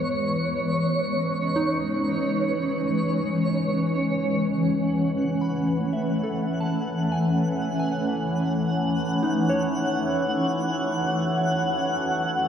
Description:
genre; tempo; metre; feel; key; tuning
ambient; free time; none; none; A lydian; A4 = 440 Hz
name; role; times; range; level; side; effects
granular cloud pad; sustained chords; 0.0-12.5 s; E3 to C#5; -24 LUFS; equal; built-in reverb
soft synth bell; arpeggios; 0.0-12.5 s; D#4 to B5; -32 LUFS; equal; chorus, diffuse ambient delay
twinkling granular texture; texture; 0.0-12.5 s; C#5 to F#5; -29 LUFS; right 1 dB; built-in reverb
overtone-sweeping drone; drone; 5.9-12.5 s; E3 to A3; -34 LUFS; equal; chorus, built-in reverb, phaser
room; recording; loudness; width
wet huge ambient reverb, RT60 9.3 s; in a vast, echoing space; -22 LUFS; side -8 dB against mid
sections
0.0-4.5 A section; 4.5-12.5 B section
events
fade-in on synth bell 4.5-12.5; fade-in on synth drone 4.5-12.5; fade-in on synth texture 4.5-12.5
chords
0.0 C#m7; 4.5 A; 9.2 F#5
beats
free time

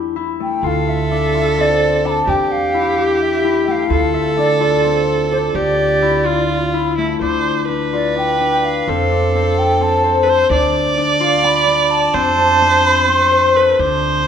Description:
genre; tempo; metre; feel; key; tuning
contemporary instrumental, chamber music in an uneven meter; 255 BPM (eighths); 7/8; straight; D dorian; A4 = 440 Hz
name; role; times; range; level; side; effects
concert harp; arpeggios; 0.0-14.3 s; A3 to C5; -19 LUFS; left 6 dB; none
upright bass; bass; 0.0-14.3 s; D2 to F2; -23 LUFS; right 4 dB; none
breathy mellow wooden flute; melody; 0.4-13.6 s; C5 to C6; -18 LUFS; equal; none
rich viola; second line; 0.6-14.3 s; E4 to D5; -17 LUFS; right 3 dB; none
room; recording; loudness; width
moderate scoring stage reverb, RT60 1.8 s; minimal, uncompressed stereo recording; -13 LUFS; side -8 dB against mid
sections
0.0-7.2 A section; 7.2-14.3 B section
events
none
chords
0.0 Em7; 0.6 Dm7; 2.3 Em7; 3.9 Dm7; 5.6 Dmadd9; 8.9 F; 10.5 Dm; 12.1 F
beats
0.16 0.40 | 0.64 0.87 1.11 1.35 1.58 1.82 2.05 | 2.29 2.52 2.75 2.98 3.21 3.45 3.68 | 3.91 4.15 4.38 4.62 4.85 5.08 5.32 | 5.55 5.79 6.03 6.26 6.50 6.74 6.98 | 7.22 7.46 7.69 7.93 8.17 8.40 8.64 | 8.88 9.11 9.35 9.58 9.81 10.05 10.28 | 10.52 10.75 10.98 11.21 11.45 11.68 11.91 | 12.15 12.38 12.62 12.85 13.09 13.32 13.56 | 13.80 14.04 14.27

